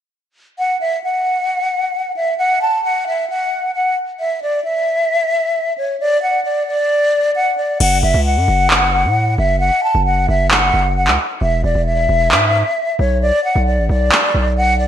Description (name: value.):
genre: hip hop, trap.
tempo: 133 BPM.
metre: 4/4.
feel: half-time.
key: unclear.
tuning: A4 = 440 Hz.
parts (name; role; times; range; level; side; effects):
breathy concert flute; melody; 0.6-14.9 s; C#5 to A5; -16 LUFS; left 1 dB; low-pass filter, ping-pong delay.
distorted 808-style bass; bass; 7.8-14.9 s; E1 to A2; -16 LUFS; equal; distortion.
booming analog drum machine; drums; 7.8-14.2 s; crash cymbal, handclaps; -16 LUFS; equal; overdrive, gated reverb.
room: moderate plate reverb, RT60 1.3 s.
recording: bright 1980s-style digital production.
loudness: -14 LUFS.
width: side -9 dB against mid.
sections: 0.6-7.8 A section; 7.8-14.9 B section.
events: hi-hats muted 7.8-14.9.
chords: 0.6 N.C.; 11.4 E; 13.2 Bm.